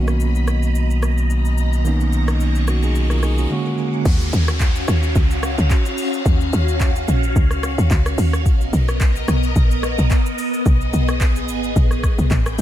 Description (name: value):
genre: amapiano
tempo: 109 BPM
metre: 4/4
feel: swing 55% on 16ths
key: unclear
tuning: A4 = 440 Hz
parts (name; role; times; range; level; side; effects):
- bell-like tine electric piano; accompaniment; 0.0-4.1 s; D3 to A#4; -23 LUFS; right 3 dB; fast stereo tremolo, tape echo
- phased string machine; sustained chords; 0.0-12.6 s; Bb3 to D6; -25 LUFS; equal; ensemble chorus, phaser
- punchy sub bass; bass; 0.0-3.5 s; B1; -17 LUFS; equal; none
- riser and downlifter; sound effects; 0.9-8.5 s; none; -32 LUFS; equal; none
- afro-pop drum kit; drums; 0.1-12.6 s; crash cymbal, handclaps, hi-hat, kick drum, rim click, shaker; -19 LUFS; equal; none
- tight log drum bass; bass; 4.1-12.6 s; Ab1 to Eb2; -18 LUFS; equal; none
room: little or no reverb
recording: echo-heavy mix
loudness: -16 LUFS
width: side -12 dB against mid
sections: 0.0-4.1 A section; 4.1-12.6 B section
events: riser 0.9-4.1; break 3.5-4.1; drop 4.1-12.6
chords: 0.0 Bmaj7; 3.5 Bb7alt; 4.1 Ebm9; 8.5 Bmaj7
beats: 0.20 0.75 1.30 | 1.85 2.40 2.95 3.50 | 4.05 4.60 5.15 5.71 | 6.25 6.81 7.36 7.91 | 8.46 9.01 9.56 10.11 | 10.66 11.21 11.76 12.31